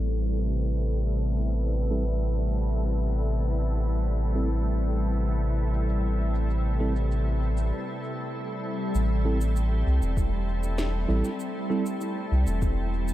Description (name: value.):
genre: ambient dub.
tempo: 98 BPM.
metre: 4/4.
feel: straight.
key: A minor.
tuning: A4 = 438 Hz.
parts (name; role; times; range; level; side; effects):
soft additive organ-like pad; sustained chords; 0.0-13.1 s; C3 to A4; -31 LUFS; equal; ensemble chorus, built-in reverb, vintage 12-bit sampler grit.
soft dub sub bass; bass; 0.0-13.1 s; E1 to C2; -25 LUFS; equal; tube saturation.
drifting glass-harmonics texture; texture; 0.5-7.7 s; B3 to B4; -41 LUFS; left 1 dB; chorus, built-in reverb.
electronic cabasa and snare drum; drums; 0.2-13.1 s; none; -40 LUFS; equal; overdrive, dub echo.
mellow tine electric piano; stabs; 1.9-11.8 s; G3 to A4; -35 LUFS; right 2 dB; none.
electronic kick drum; drums; 10.2-12.7 s; none; -28 LUFS; equal; overdrive.
room: light reverb.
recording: low-pass filter.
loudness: -24 LUFS.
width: side -14 dB against mid.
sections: 0.0-8.9 A section; 8.9-13.1 B section.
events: filter sweep on ambient pad 0.0-8.9; filter sweep 0.0-8.9; break 7.7-8.9.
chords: 0.0 Am7.